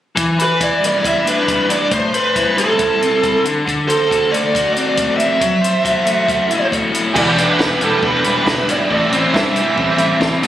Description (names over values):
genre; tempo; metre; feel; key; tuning
indie rock; 138 BPM; 4/4; straight; E minor; A4 = 443 Hz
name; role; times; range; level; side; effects
biting overdriven guitar; riff; 0.2-10.5 s; A2 to C5; -17 LUFS; left 2 dB; spring reverb
compact cocktail drum kit; drums; 0.2-10.5 s; crash cymbal, hi-hat, kick drum, snare drum; -22 LUFS; left 1 dB; none
bluesy overdriven lead guitar; melody; 0.4-10.2 s; A4 to E5; -17 LUFS; right 1 dB; distortion, digital delay
overdriven electric guitar; riff; 7.1-10.5 s; E3 to A4; -17 LUFS; right 4 dB; ensemble chorus
modern bright fingered electric bass; bass; 7.2-10.5 s; E1 to G2; -23 LUFS; equal; none
room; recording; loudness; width
light reverb, studio ambience; recorded on a phone in the room, studio reverb, compression; -13 LUFS; side -12 dB against mid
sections
0.2-7.2 A section; 7.2-10.5 B section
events
none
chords
0.2 Em7; 1.9 Am7; 3.4 D7; 5.4 F#m7b5; 7.2 Em7; 8.9 Am7